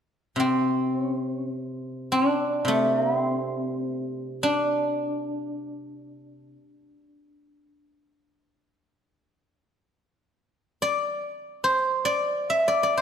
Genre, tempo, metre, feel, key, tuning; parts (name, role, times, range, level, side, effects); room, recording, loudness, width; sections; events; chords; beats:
chinese traditional, Chinese solo plucked strings; free time; A4 = 440 Hz
guzheng; solo; 0.4-13.0 s; C3 to E5; -23 LUFS; equal
moderate scoring stage reverb, RT60 1.5 s; -23 LUFS; side -8 dB against mid
0.0-13.0 A section
free time